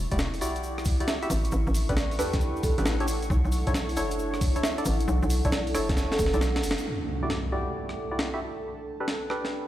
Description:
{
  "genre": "UK garage, two-step garage",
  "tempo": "135 BPM",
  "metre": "4/4",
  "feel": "swing 66% on 16ths",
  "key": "unclear",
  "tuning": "A4 = 438 Hz",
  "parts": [
    { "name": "airy breathy pad", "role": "sustained chords", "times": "0.0-9.7 s", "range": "A4 to C#6", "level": "-42 LUFS", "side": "right 1 dB", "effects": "chorus, vintage 12-bit sampler grit, sidechain pumping" },
    { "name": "hollow knocking FM bass", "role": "bass", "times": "0.0-6.8 s", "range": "E1 to E2", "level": "-28 LUFS", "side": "equal", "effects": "none" },
    { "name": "deep dark ambient pad", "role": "texture", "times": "0.0-9.7 s", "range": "D4 to F#5", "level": "-35 LUFS", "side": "equal", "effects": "chorus, built-in reverb, sidechain pumping" },
    { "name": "percussive organ stab", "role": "stabs", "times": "0.1-9.7 s", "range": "D4 to E5", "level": "-33 LUFS", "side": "equal", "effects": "chorus, digital delay" },
    { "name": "breakbeat sampler-style drum kit", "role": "drums", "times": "0.1-9.5 s", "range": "hi-hat, rim click, snare drum", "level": "-32 LUFS", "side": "equal", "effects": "none" },
    { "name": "electronic kick drum", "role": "drums", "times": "0.1-6.3 s", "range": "none", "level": "-27 LUFS", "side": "equal", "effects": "none" },
    { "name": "tube shaker", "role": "percussion", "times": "0.1-6.8 s", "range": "none", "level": "-42 LUFS", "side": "left 3 dB", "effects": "none" },
    { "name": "buzzing marimba with soft mallets", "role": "melody", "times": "1.1-6.6 s", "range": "A4 to E5", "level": "-33 LUFS", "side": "right 2 dB", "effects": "digital delay" },
    { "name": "impact", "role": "sound effects", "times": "6.9-8.6 s", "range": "none", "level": "-34 LUFS", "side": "equal", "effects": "none" }
  ],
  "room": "light reverb",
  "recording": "played on a big sound system in a bare room, large studio reverb",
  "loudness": "-24 LUFS",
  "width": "side -13 dB against mid",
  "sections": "0.0-6.9 A section; 6.9-9.7 B section",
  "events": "drum fill 6.0-6.9; band accent 6.7; impact 6.9-8.6; filter sweep on synth stab 6.9-9.7",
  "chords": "0.0 Em9; 1.3 A9sus4; 3.3 Bm11; 6.9 Em9; 8.4 A9sus4"
}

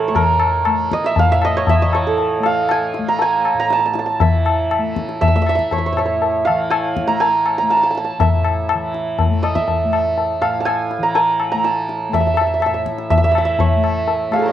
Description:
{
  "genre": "indian classical, Hindustani",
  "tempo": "121 BPM",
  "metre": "4/4",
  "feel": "straight",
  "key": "A raga puriya dhanashri",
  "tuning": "A4 = 440 Hz",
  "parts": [
    { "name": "santur", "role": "melody", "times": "0.0-14.5 s", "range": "G#4 to Bb5", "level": "-17 LUFS", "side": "right 4 dB", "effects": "none" },
    { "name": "tanpura", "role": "drone", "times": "0.0-14.5 s", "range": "A2 to A3", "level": "-26 LUFS", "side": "left 3 dB", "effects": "cassette tape" },
    { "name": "tabla", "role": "percussion", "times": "0.1-14.5 s", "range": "none", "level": "-18 LUFS", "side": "left 4 dB", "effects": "none" }
  ],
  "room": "light reverb, small room ambience",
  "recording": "home recording on cassette",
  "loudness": "-15 LUFS",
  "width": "side -11 dB against mid",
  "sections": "0.0-4.2 A section; 4.2-14.5 B section",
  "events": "speeding up 0.0-14.5",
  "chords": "none"
}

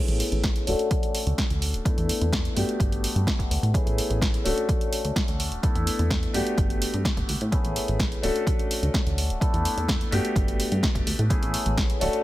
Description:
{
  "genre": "filtered disco house",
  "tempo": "127 BPM",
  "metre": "4/4",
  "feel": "straight",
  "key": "A major",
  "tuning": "A4 = 440 Hz",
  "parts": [
    { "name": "warm concert grand piano", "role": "accompaniment", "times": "0.0-12.2 s", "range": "A3 to A4", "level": "-28 LUFS", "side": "left 2 dB", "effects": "phaser, sidechain pumping, low-pass filter" },
    { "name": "plucky analog bass", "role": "bass", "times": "0.0-12.1 s", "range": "D1 to A2", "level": "-27 LUFS", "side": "equal", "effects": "sidechain pumping, low-pass filter" },
    { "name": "punchy analog drum machine", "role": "drums", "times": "0.1-12.2 s", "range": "hi-hat, snare drum", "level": "-30 LUFS", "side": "right 1 dB", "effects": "overdrive, sidechain pumping on hats, sidechain pumping on cymbals" },
    { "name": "electronic kick drum", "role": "drums", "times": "0.4-11.9 s", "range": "none", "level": "-26 LUFS", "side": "equal", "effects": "overdrive" }
  ],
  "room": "little or no reverb",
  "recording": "none",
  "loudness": "-22 LUFS",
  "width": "side -16 dB against mid",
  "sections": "0.0-12.2 A section",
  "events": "filter sweep 0.0-12.2",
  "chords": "0.0 Amaj9; 0.7 Dmaj7; 1.9 E7sus4; 2.6 Gmaj9; 3.7 Amaj9; 4.5 Dmaj7; 5.6 E7sus4; 6.3 Gmaj9; 7.5 Amaj9; 8.2 Dmaj7; 9.4 E7sus4; 10.1 Gmaj9; 11.3 Amaj9"
}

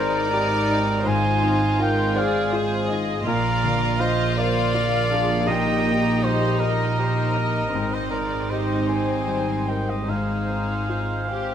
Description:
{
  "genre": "cinematic",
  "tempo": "54 BPM (dotted quarters)",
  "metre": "6/8",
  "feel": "rubato",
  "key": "F dorian",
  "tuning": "A4 = 439 Hz",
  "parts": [
    { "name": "warm symphonic violin section", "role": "melody", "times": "0.0-11.5 s", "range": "C4 to Ab4", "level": "-29 LUFS", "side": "left 3 dB", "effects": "none" },
    { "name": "mellow cor anglais", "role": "second line", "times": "0.0-11.5 s", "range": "Bb4 to Ab5", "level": "-26 LUFS", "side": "right 1 dB", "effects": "none" },
    { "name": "warm symphonic violin section", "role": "second line", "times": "0.0-11.5 s", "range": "G4 to G5", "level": "-30 LUFS", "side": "left 4 dB", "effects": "none" },
    { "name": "clear grand piano", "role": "accompaniment", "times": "0.0-11.5 s", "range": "Ab2 to G5", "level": "-29 LUFS", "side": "left 1 dB", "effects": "none" },
    { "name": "rich studio viola section", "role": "accompaniment", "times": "0.0-11.5 s", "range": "Eb4 to F5", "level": "-30 LUFS", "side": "right 2 dB", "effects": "none" },
    { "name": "concert harp", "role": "arpeggios", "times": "0.0-11.5 s", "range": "Ab2 to G5", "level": "-31 LUFS", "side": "left 7 dB", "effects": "none" },
    { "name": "rich symphonic double bass section", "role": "bass", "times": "0.0-11.5 s", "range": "Ab1 to Bb1", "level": "-28 LUFS", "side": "right 4 dB", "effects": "none" },
    { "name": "warm symphonic cello section", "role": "bass", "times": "0.0-11.5 s", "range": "Ab2 to Bb2", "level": "-29 LUFS", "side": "right 2 dB", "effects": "none" }
  ],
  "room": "moderate scoring stage reverb, RT60 1.5 s",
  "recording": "none",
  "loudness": "-20 LUFS",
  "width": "side -9 dB against mid",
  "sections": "0.0-11.5 A section",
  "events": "none",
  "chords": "0.0 Abmaj7; 1.1 Fm7/Ab; 3.3 Bb; 5.5 Eb/Bb; 7.7 Abmaj7; 10.1 Fm7/Ab"
}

